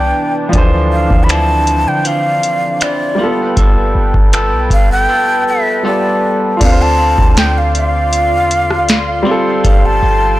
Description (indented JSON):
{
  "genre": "contemporary R&B",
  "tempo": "79 BPM",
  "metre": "4/4",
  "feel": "straight",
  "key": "D dorian",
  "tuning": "A4 = 438 Hz",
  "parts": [
    { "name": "breathy jazz flute", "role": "melody", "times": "0.0-10.4 s", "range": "D5 to B5", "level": "-15 LUFS", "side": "equal", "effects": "tape echo" },
    { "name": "clear grand piano", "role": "accompaniment", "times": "0.0-10.4 s", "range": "E3 to C5", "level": "-18 LUFS", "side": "right 1 dB", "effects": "none" },
    { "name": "warm analog pad", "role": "sustained chords", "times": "0.0-10.4 s", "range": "D4 to C6", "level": "-22 LUFS", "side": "equal", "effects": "chorus, sidechain pumping" },
    { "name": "clean electric guitar", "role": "arpeggios", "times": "0.0-10.4 s", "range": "C3 to A4", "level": "-20 LUFS", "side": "left 2 dB", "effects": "spring reverb, tape echo" },
    { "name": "clean 808-style bass", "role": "bass", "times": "0.0-10.4 s", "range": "G1 to D3", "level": "-16 LUFS", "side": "equal", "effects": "none" },
    { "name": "booming analog drum machine", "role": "drums", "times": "0.5-9.8 s", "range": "crash cymbal, finger snaps, hi-hat, kick drum, rim click, snare drum", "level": "-13 LUFS", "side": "equal", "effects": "soft clipping on snare" }
  ],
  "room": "digital ambience",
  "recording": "blown-out, overdriven recording, overdrive",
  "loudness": "-10 LUFS",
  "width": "side -16 dB against mid",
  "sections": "0.0-6.6 A section; 6.6-10.4 B section",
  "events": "none",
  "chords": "0.0 Cmaj9; 0.5 Dm9; 3.2 G9; 6.6 Dm9; 9.3 G9sus4"
}